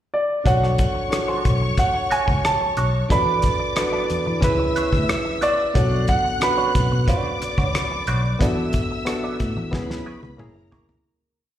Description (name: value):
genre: lush 1970s-style soul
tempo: 90 BPM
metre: 4/4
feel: straight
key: B dorian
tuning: A4 = 440 Hz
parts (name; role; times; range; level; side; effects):
- warm grand piano; melody; 0.1-10.4 s; D5 to B5; -23 LUFS; right 2 dB; plate reverb, slapback echo, tape echo
- barky reed electric piano; accompaniment; 0.4-11.1 s; A#3 to C#5; -26 LUFS; equal; overdrive, plate reverb, slapback echo
- rich studio string section; second line; 0.5-11.1 s; A#4 to F#6; -29 LUFS; left 3 dB; plate reverb, slapback echo
- semi-hollow electric guitar; riff; 0.5-10.9 s; A3 to D5; -30 LUFS; right 4 dB; wah, slapback echo
- vintage muted fingered electric bass; bass; 0.5-10.9 s; F#1 to E3; -23 LUFS; equal; none
- cloth-damped thuddy drum kit; drums; 0.5-11.0 s; hi-hat, kick drum, rim click, snare drum, toms; -23 LUFS; equal; none
room: light reverb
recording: live gig heard through the venue's PA, recital hall reverb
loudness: -18 LUFS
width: side -11 dB against mid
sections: 0.0-0.5 pickup bar; 0.5-11.1 verse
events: fade-out 8.4-11.1; drum fill 9.7-11.1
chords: 0.5 Bm9; 3.1 E7sus4; 4.4 C#m7; 5.8 Bm9; 8.4 E7sus4; 9.7 C#m7; 10.4 F#9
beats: | 0.46 1.12 1.78 2.44 | 3.11 3.77 4.43 5.09 | 5.76 6.42 7.08 7.75 | 8.41 9.07 9.74 10.40